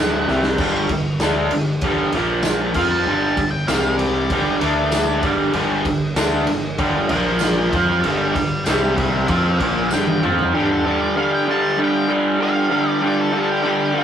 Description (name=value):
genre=garage rock duo or trio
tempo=97 BPM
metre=4/4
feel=straight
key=unclear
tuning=A4 = 442 Hz
part: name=octave-fuzz lead guitar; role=melody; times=0.0-14.0 s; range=G4 to A5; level=-25 LUFS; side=right 1 dB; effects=distortion
part: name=raw garage guitar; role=riff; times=0.0-14.0 s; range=D2 to F4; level=-18 LUFS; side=equal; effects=overdrive
part: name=growling picked electric bass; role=bass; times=0.0-10.5 s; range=D1 to F2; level=-27 LUFS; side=equal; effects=overdrive
part: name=raw garage drum kit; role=drums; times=0.3-10.5 s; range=crash cymbal, kick drum, ride cymbal, snare drum, toms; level=-23 LUFS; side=equal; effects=none
part: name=tambourine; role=percussion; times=1.2-10.0 s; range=none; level=-34 LUFS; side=right 3 dB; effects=none
room=moderate studio reverb, RT60 0.6 s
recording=rough rehearsal-room recording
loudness=-16 LUFS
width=side -9 dB against mid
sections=0.0-10.5 A section; 10.5-14.0 B section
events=lead electric guitar solo 0.0-10.5; drum fill 0.3-0.6, 9.9-10.5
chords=0.0 D; 0.6 G5; 2.1 Bb5; 2.8 G5; 3.7 C5; 4.3 G5; 4.6 D5; 5.2 G5; 7.1 Bb5; 7.7 G5; 8.7 C5; 9.3 G5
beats=| 0.58 1.20 1.82 2.44 | 3.06 3.68 4.30 4.93 | 5.55 6.17 6.79 7.41 | 8.04 8.66 9.28 9.90 | 10.52 11.14 11.77 12.39 | 13.01 13.63